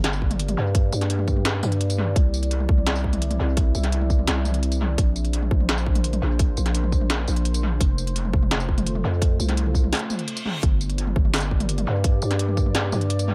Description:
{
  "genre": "half-time drum and bass",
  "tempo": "170 BPM",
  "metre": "4/4",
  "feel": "half-time",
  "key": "G dorian",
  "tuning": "A4 = 441 Hz",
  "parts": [
    { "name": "deep dark ambient pad", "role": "sustained chords", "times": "0.0-13.3 s", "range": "A3 to D5", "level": "-35 LUFS", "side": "equal", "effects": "chorus, built-in reverb, sidechain pumping" },
    { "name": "growling 808-style bass", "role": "bass", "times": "0.0-13.3 s", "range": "F1 to G2", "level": "-26 LUFS", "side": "equal", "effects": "none" },
    { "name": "industrial drum kit", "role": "drums", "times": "0.0-13.3 s", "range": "hi-hat, snare drum, tambourine, toms", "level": "-30 LUFS", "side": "equal", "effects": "dub echo" },
    { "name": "electronic kick drum", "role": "drums", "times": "0.2-12.6 s", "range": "none", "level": "-23 LUFS", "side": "equal", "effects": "none" },
    { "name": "reverse cymbal", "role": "sound effects", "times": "10.1-10.6 s", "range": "none", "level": "-37 LUFS", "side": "equal", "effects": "none" }
  ],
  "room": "little or no reverb",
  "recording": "echo-heavy mix",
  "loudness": "-22 LUFS",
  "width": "mono",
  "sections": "0.0-13.3 A section",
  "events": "break 9.9-10.6; reverse cymbal 10.1-10.6",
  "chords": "0.0 Gm; 2.2 Cadd9; 5.0 Bbadd9; 7.8 F; 10.6 Gm"
}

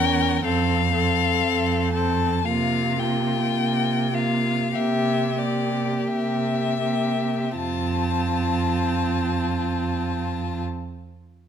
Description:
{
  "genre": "classical, slow romantic movement for string quartet",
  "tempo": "38-62 BPM",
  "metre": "4/4",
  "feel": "rubato",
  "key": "F major",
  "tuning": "A4 = 440 Hz",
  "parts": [
    { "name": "clear violin", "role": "melody", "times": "0.0-10.6 s", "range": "D5 to A5", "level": "-26 LUFS", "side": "left 11 dB", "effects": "none" },
    { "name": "bright violin", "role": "second line", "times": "0.0-10.6 s", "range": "F4 to Bb4", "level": "-29 LUFS", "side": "left 4 dB", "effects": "none" },
    { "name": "warm viola", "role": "accompaniment", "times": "0.0-10.6 s", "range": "Bb3 to C#4", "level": "-26 LUFS", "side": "right 2 dB", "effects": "none" },
    { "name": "rich cello", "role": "bass", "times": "0.0-10.6 s", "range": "E2 to C3", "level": "-26 LUFS", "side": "right 5 dB", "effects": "none" }
  ],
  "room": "moderate recital hall reverb, RT60 1.4 s",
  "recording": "close, detailed microphones",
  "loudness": "-21 LUFS",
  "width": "side -8 dB against mid",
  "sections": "0.0-7.6 A section; 7.6-11.5 B section",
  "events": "slowing down 0.0-7.6",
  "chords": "0.4 F; 2.5 C7sus4; 7.6 F"
}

